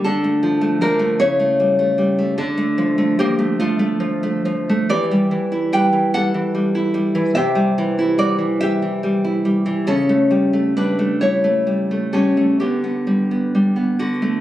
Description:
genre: romantic piece for solo classical guitar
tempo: 42-52 BPM (dotted quarters)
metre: 6/8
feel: rubato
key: G major from 4.9 s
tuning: A4 = 438 Hz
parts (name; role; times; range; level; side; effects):
- nylon-string guitar; solo; 0.0-14.4 s; C3 to G5; -16 LUFS; equal; none
room: moderate recital hall reverb, RT60 1.7 s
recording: recorded on a phone in the room, club reverb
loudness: -16 LUFS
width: side -13 dB against mid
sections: 0.0-14.4 A section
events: none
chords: 0.0 Dm; 1.2 A7/C#; 2.4 Dm; 4.9 Em7; 7.4 C; 9.9 A7/C#; 12.6 G/D

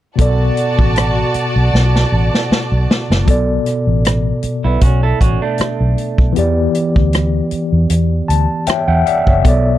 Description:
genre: lush 1970s-style soul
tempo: 78 BPM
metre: 4/4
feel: swing 54% on 16ths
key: B minor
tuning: A4 = 440 Hz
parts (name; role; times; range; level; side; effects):
- warm studio violin section; second line; 0.2-3.2 s; F#4 to A5; -20 LUFS; right 2 dB; none
- tine electric piano; accompaniment; 0.2-9.8 s; B2 to A5; -17 LUFS; left 2 dB; medium stereo tremolo
- vintage muted fingered electric bass; bass; 0.2-9.7 s; F#1 to E2; -15 LUFS; equal; none
- vintage drum kit; drums; 0.2-9.6 s; hi-hat, kick drum, rim click, snare drum; -15 LUFS; equal; none
- electric guitar through a small old amp; riff; 4.6-6.3 s; A3 to A4; -20 LUFS; right 6 dB; warbly pitch drift
room: little or no reverb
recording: dry, close 1970s-style studio recording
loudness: -12 LUFS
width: side -13 dB against mid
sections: 0.2-3.3 A section; 3.3-9.8 B section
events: drum fill 1.7-3.3; tine electric piano fill 7.9-9.4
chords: 0.2 Bm7; 6.4 Em7

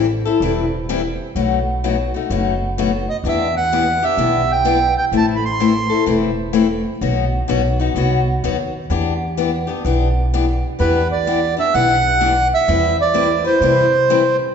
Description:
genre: acoustic string swing (jazz manouche)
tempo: 127 BPM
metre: 4/4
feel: swing 64% on 8ths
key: E minor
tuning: A4 = 440 Hz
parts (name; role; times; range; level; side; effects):
- picked steel-string acoustic guitar; accompaniment; 0.0-14.2 s; B2 to B4; -19 LUFS; left 6 dB; none
- upright bass; bass; 0.0-14.4 s; E1 to C3; -22 LUFS; right 1 dB; none
- accordion; melody; 3.1-6.0, 10.8-14.4 s; B4 to C6; -16 LUFS; right 3 dB; none
room: wet recital hall reverb, RT60 1.6 s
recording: recorded in a church or concert hall, nothing above 7.8 kHz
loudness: -15 LUFS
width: side -7 dB against mid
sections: 0.0-10.8 A section; 10.8-14.5 A section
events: none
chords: 0.0 Am7; 1.4 B7; 3.2 Em7; 5.1 Am; 7.0 B; 8.9 Em7; 12.7 Cmaj7/E

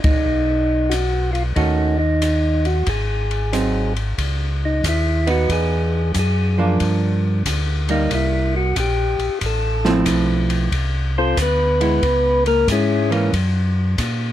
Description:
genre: soul jazz organ trio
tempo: 92 BPM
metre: 4/4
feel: swing 66% on 8ths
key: unclear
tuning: A4 = 440 Hz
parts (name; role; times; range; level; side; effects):
- percussive tonewheel organ; melody; 0.0-13.1 s; G#3 to C5; -20 LUFS; left 1 dB; slow rotary speaker
- mellow tonewheel organ; bass; 0.0-14.3 s; G#1 to A#2; -20 LUFS; equal; slow rotary speaker
- open jazz drum kit; drums; 0.0-14.2 s; hi-hat, kick drum, ride cymbal, snare drum; -25 LUFS; left 1 dB; none
- archtop guitar, miked and amplified; accompaniment; 1.6-13.3 s; D#3 to F#4; -21 LUFS; right 3 dB; none
room: light reverb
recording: none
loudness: -16 LUFS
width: side -12 dB against mid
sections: 0.0-4.2 A section; 4.2-14.3 B section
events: band accent 0.0; tonewheel organ solo 4.2-14.3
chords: 0.0 G#m7; 1.6 D#m7b5; 2.9 G#7; 4.2 C#m9; 6.8 Gm7; 8.1 C5; 9.4 Fmaj7; 12.0 C#m7; 13.3 F#

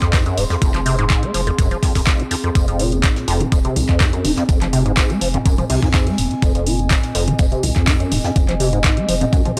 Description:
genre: acid house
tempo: 124 BPM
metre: 4/4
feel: straight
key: F minor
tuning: A4 = 440 Hz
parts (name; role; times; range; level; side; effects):
- liquid acid bass; riff; 0.0-9.6 s; F1 to Ab3; -23 LUFS; equal; phaser, overdrive, sidechain pumping, analog delay
- saturated sub bass; bass; 0.0-9.4 s; Eb1 to F2; -26 LUFS; equal; sidechain pumping
- electronic kick drum; drums; 0.0-9.4 s; none; -19 LUFS; equal; overdrive
- jazz brush drum kit; drums; 0.0-9.6 s; hi-hat, snare drum, tambourine; -36 LUFS; equal; none
- punchy analog drum machine; drums; 0.0-9.6 s; handclaps, hi-hat, toms; -25 LUFS; equal; none
- warbly tape-like pad; texture; 0.0-9.6 s; C4 to C6; -28 LUFS; equal; chorus, built-in reverb, sidechain pumping
room: light reverb, small room reverb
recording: dry, gritty hardware recording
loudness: -17 LUFS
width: mono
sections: 0.0-9.6 A section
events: filter sweep on acid bass 0.0-9.6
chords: 0.0 Fm

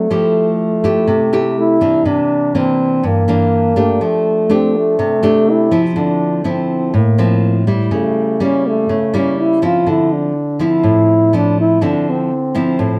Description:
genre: bossa nova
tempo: 123 BPM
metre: 4/4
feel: straight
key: F major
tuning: A4 = 439 Hz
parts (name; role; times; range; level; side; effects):
- dark trombone; melody; 0.0-13.0 s; A3 to F4; -17 LUFS; equal; none
- nylon-string guitar; accompaniment; 0.0-13.0 s; G2 to G4; -18 LUFS; equal; none
room: moderate studio reverb, RT60 0.7 s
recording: band playing live in one room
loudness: -15 LUFS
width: mono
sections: 0.0-2.1 A section; 2.1-13.0 B section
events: none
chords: 0.1 Fmaj9; 2.1 C9; 4.0 F69; 6.0 Dm9; 7.9 A7b9/C#; 9.9 Dm9

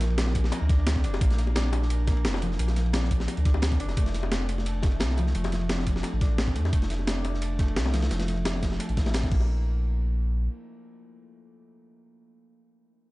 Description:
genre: liquid drum and bass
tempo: 174 BPM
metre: 4/4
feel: straight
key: unclear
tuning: A4 = 440 Hz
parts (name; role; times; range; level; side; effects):
- concert harp; arpeggios; 0.0-12.5 s; F3 to Bb4; -34 LUFS; left 1 dB; dub echo
- warm sub bass; bass; 0.0-10.5 s; F1 to F2; -26 LUFS; equal; none
- breakbeat sampler-style drum kit; drums; 0.0-9.4 s; crash cymbal, hi-hat, snare drum; -32 LUFS; equal; none
- crunchy breakbeat drum kit; drums; 0.0-9.3 s; ride cymbal, snare drum; -37 LUFS; equal; high-pass filter on cymbals, high-pass filter on snare, high-pass filter on room
- electronic kick drum; drums; 0.3-9.4 s; none; -25 LUFS; equal; none
- bongos; percussion; 0.3-9.5 s; none; -38 LUFS; left 4 dB; none
room: small room ambience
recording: dark, warm production, nothing above 10.4 kHz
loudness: -23 LUFS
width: side -20 dB against mid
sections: 0.0-9.5 A section; 9.5-12.2 B section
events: none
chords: 0.0 Bb; 3.8 F; 9.3 N.C.

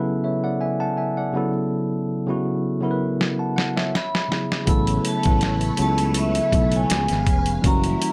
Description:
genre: R&B, neo-soul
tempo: 81 BPM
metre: 4/4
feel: swing 53% on 16ths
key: A major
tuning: A4 = 436 Hz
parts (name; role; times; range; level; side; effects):
- bright tine electric piano; accompaniment; 0.0-8.1 s; C#3 to A5; -25 LUFS; equal; none
- boom bap sampler-style drum kit; drums; 3.2-8.1 s; hi-hat, kick drum, snare drum; -25 LUFS; equal; none
- vibraphone with medium hard mallets; melody; 4.0-8.1 s; E5 to B5; -28 LUFS; equal; none
- phased string machine; sustained chords; 4.7-8.1 s; G3 to E#5; -34 LUFS; equal; ensemble chorus, phaser
- sustaining fretless electric bass; bass; 4.7-7.9 s; E#1 to C#2; -26 LUFS; equal; none
room: moderate small room reverb, RT60 0.6 s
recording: none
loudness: -22 LUFS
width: mono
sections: 0.0-8.1 A section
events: drum fill 3.2-4.7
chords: 0.0 B5; 1.3 F#m7; 3.9 E; 4.7 Amaj9; 6.9 C#7

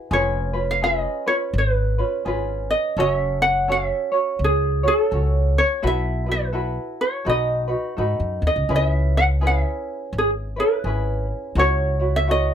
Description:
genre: Hawaiian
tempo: 84 BPM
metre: 4/4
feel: swing 60% on 8ths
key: unclear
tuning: A4 = 439 Hz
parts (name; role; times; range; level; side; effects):
- tenor ukulele; accompaniment; 0.0-12.5 s; C#4 to C#5; -25 LUFS; right 2 dB; none
- ukulele; melody; 0.1-12.5 s; G#4 to F#5; -22 LUFS; equal; none
- upright bass; bass; 0.1-12.5 s; E#1 to G#2; -22 LUFS; equal; none
room: little or no reverb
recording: close, detailed microphones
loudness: -19 LUFS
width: side -9 dB against mid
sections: 0.0-12.5 A section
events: none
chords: 0.1 C#7/E#; 3.0 F#m; 5.8 B7sus4; 7.3 B7; 8.7 C#m7; 11.6 F#m7/C#

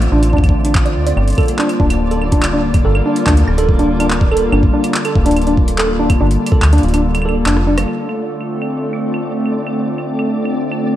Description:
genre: IDM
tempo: 143 BPM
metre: 4/4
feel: straight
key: D minor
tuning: A4 = 440 Hz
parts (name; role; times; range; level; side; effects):
- hollow soft pad; sustained chords; 0.0-11.0 s; D3 to C5; -19 LUFS; left 1 dB; chorus
- metallic FM bass; bass; 0.0-7.9 s; D1 to D2; -16 LUFS; equal; none
- booming analog drum machine; drums; 0.0-10.8 s; claves, handclaps, hi-hat, rim click; -23 LUFS; right 1 dB; low-pass filter on perc, low-pass filter on hats, low-pass filter on snare, digital delay
- flickering grainy texture; texture; 0.0-11.0 s; D4 to D5; -28 LUFS; equal; built-in reverb
- tine electric piano; arpeggios; 0.1-7.7 s; D4 to D5; -18 LUFS; right 1 dB; lush chorus, digital delay
- electronic kick drum; drums; 0.3-6.6 s; none; -14 LUFS; equal; none
room: moderate echo chamber reverb, RT60 1.9 s, digital ambience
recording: dark, warm production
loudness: -12 LUFS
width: side -12 dB against mid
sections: 0.0-7.9 A section; 7.9-11.0 B section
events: break 7.0-7.9; drum fill 7.5-7.9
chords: 0.0 Dm7; 1.2 Gm7; 7.9 Dm7

